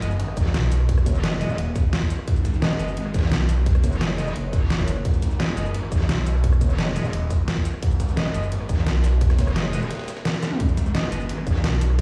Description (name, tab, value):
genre	dark technical drum and bass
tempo	173 BPM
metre	4/4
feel	straight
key	G# minor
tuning	A4 = 440 Hz
part	sludgy distorted guitar	stabs	0.0-11.2 s	B3 to D#5	-37 LUFS	equal	overdrive, digital delay
part	phased detuned saw bass	bass	0.0-12.0 s	D#1 to B1	-25 LUFS	equal	phaser, overdrive, sidechain pumping
part	breakbeat sampler-style drum kit	drums	0.0-12.0 s	hi-hat, ride cymbal, snare drum	-41 LUFS	equal	high-pass filter on cymbals, high-pass filter on snare, high-pass filter on hats
part	dubstep drum kit	drums	0.0-12.0 s	hi-hat, rim click, shaker, snare drum, toms	-30 LUFS	equal	none
part	impact and zap	sound effects	0.0-0.9, 10.4-10.5 s	none	-39 LUFS	equal	none
part	metallic wobble bass	bass	0.4-11.6 s	F#1 to A#1	-27 LUFS	equal	chorus
part	electronic kick drum	drums	0.4-12.0 s	none	-24 LUFS	equal	none
room	digital ambience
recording	played on a big sound system in a bare room, stone room reverb, small room reverb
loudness	-22 LUFS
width	mono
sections	0.0-12.0 A section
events	impact 0.0-0.9; break 9.9-10.6; drum fill 10.4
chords	0.0 G#m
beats	0.20 0.54 | 0.89 1.24 1.58 1.93 | 2.28 2.62 2.97 3.32 | 3.66 4.01 4.36 4.71 | 5.05 5.40 5.75 6.09 | 6.44 6.79 7.13 7.48 | 7.83 8.17 8.52 8.87 | 9.21 9.56 9.91 10.25 | 10.60 10.95 11.29 11.64 | 11.99